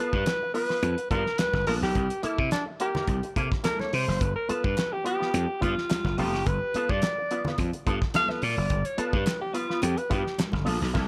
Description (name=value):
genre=funk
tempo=107 BPM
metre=4/4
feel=straight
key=G mixolydian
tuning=A4 = 438 Hz
part: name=breathy alto saxophone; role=melody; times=0.0-10.4 s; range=D4 to F5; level=-31 LUFS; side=equal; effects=none
part: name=electric guitar with an envelope filter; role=accompaniment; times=0.0-11.1 s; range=Bb3 to B4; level=-37 LUFS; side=equal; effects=ensemble chorus
part: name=gritty slap bass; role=bass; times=0.1-11.1 s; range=F1 to C3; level=-30 LUFS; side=equal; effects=overdrive
part: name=cloth-damped thuddy drum kit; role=drums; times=0.1-11.1 s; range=crash cymbal, hi-hat, kick drum, snare drum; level=-32 LUFS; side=equal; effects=none
part: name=congas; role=percussion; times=0.3-10.6 s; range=none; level=-42 LUFS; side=equal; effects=none
part: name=group handclap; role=percussion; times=0.3-10.5 s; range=none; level=-43 LUFS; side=equal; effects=none
room=light reverb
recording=none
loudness=-27 LUFS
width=mono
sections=0.0-11.1 A section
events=alto saxophone solo 0.0-11.1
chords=0.0 G9; 2.0 C6; 4.2 G9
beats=0.26 0.83 1.39 | 1.96 2.52 3.08 3.65 | 4.21 4.77 5.34 5.90 | 6.46 7.02 7.58 8.14 | 8.71 9.27 9.83 10.39 | 10.95